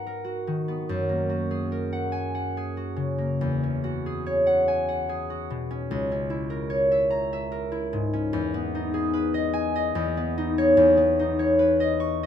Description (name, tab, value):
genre	classical, solo harp piece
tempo	73 BPM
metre	3/4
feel	rubato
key	unclear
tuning	A4 = 440 Hz
part	concert harp	solo	0.0-12.3 s	C#2 to C#6	-22 LUFS	left 1 dB	none
room	light reverb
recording	close, detailed microphones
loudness	-22 LUFS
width	side -9 dB against mid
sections	0.0-12.3 A section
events	none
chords	0.0 G#m9; 0.9 F#69; 3.4 E69; 5.9 C#m6; 8.3 Emaj7; 10.0 C#m9/E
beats	0.04 | 0.88 1.70 2.54 | 3.40 4.27 5.09 | 5.90 6.71 7.53 | 8.35 9.15 9.98 | 10.81 11.61